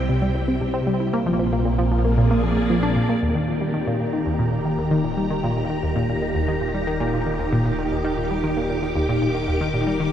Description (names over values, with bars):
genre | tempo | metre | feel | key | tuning
ambient, sequencer-driven space music | 115 BPM | 4/4 | straight | Bb lydian, Eb major from 3.2 s | A4 = 440 Hz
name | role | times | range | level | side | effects
phased string machine | sustained chords | 0.0-10.1 s | Bb2 to D6 | -24 LUFS | right 1 dB | ensemble chorus, phaser
analog pluck | riff | 0.0-10.1 s | Eb2 to E4 | -22 LUFS | equal | chorus, phaser, cassette tape, tape echo
fat analog bass | bass | 0.0-10.1 s | Eb1 to C2 | -29 LUFS | equal | none
room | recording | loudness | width
wet huge ambient reverb, RT60 7.9 s | in a vast, echoing space | -19 LUFS | side -10 dB against mid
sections
0.0-3.2 A section; 3.2-10.1 B section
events
filter sweep on synth arpeggio sound 0.0-3.2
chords
0.0 C; 1.1 Bb7; 3.2 Eb